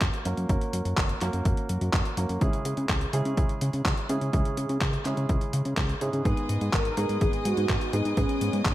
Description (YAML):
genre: italo disco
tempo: 125 BPM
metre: 4/4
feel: straight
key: unclear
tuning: A4 = 435 Hz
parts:
  - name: dark baby grand piano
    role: stabs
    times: 0.0-8.7 s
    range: G#2 to A#4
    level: -32 LUFS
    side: right 2 dB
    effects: none
  - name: fat analog bass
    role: bass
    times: 0.0-8.7 s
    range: F#1 to C#3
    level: -28 LUFS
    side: equal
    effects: none
  - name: detuned 8-bit digital drum machine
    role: drums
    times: 0.0-8.7 s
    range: handclaps, hi-hat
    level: -32 LUFS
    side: equal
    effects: overdrive, gated reverb
  - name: electronic kick drum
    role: drums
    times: 0.0-8.7 s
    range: none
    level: -27 LUFS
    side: equal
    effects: none
  - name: clear studio string section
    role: sustained chords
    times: 6.3-8.7 s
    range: B3 to D#6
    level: -36 LUFS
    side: left 3 dB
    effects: none
  - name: mellow synth brass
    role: melody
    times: 6.7-8.7 s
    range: C#4 to A#4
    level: -30 LUFS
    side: equal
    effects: chorus, digital delay
room: digital ambience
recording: vinyl crackle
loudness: -24 LUFS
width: side -14 dB against mid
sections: 0.0-8.7 A section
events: none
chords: 0.0 F#; 2.4 C#m; 6.3 G#m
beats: 0.01 | 0.49 0.97 1.45 1.93 | 2.41 2.89 3.37 3.85 | 4.33 4.81 5.29 5.77 | 6.25 6.73 7.21 7.69 | 8.17 8.65